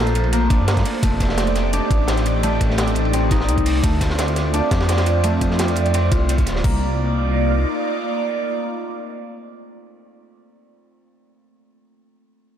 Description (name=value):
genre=liquid drum and bass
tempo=171 BPM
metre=4/4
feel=straight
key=C dorian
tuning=A4 = 440 Hz
part: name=airy breathy pad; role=sustained chords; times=0.0-10.2 s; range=A3 to D5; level=-24 LUFS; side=right 2 dB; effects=chorus, phaser, sidechain pumping
part: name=concert harp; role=arpeggios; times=0.0-9.9 s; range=A3 to F4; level=-25 LUFS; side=left 1 dB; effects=vintage 12-bit sampler grit, low-pass filter, ping-pong delay
part: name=dark detuned saw bass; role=bass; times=0.0-7.7 s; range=D1 to G2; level=-20 LUFS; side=equal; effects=none
part: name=garage drum kit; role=drums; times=0.1-6.7 s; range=crash cymbal, hi-hat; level=-32 LUFS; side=right 4 dB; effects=overdrive
part: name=crunchy breakbeat drum kit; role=drums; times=0.2-6.6 s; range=hi-hat, ride cymbal, snare drum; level=-28 LUFS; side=equal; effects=high-pass filter on cymbals, high-pass filter on hats, high-pass filter on snare, high-pass filter on room
part: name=electronic kick drum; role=drums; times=0.5-6.7 s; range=none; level=-20 LUFS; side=equal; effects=overdrive
room=light reverb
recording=none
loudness=-17 LUFS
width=side -9 dB against mid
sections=0.0-6.6 A section; 6.6-9.4 B section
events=none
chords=0.0 Gm11; 0.9 F13; 3.8 Dm7; 6.6 Cm11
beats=0.33 0.68 | 1.03 1.38 1.73 2.08 | 2.43 2.78 3.13 3.48 | 3.84 4.19 4.54 4.89 | 5.24 5.59 5.94 6.29 | 6.64 6.99 7.34 7.70 | 8.05 8.40 8.75 9.10